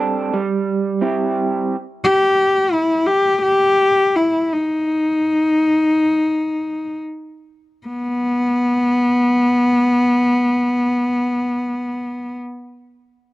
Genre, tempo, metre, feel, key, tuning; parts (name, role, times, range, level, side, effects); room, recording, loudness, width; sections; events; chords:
folk; 62-90 BPM; 4/4; straight; A4 = 440 Hz
electric guitar through a small old amp; arpeggios; 0.0-1.8 s; G3 to A4; -18 LUFS; right 4 dB; harmonic tremolo
warm cello; melody; 2.0-12.3 s; B3 to G4; -15 LUFS; left 1 dB
small room ambience; dry, close 1970s-style studio recording; -15 LUFS; side -17 dB against mid
0.0-7.8 A section; 7.8-11.7 B section
slowing down 1.7-7.8
0.3 C; 1.7 N.C.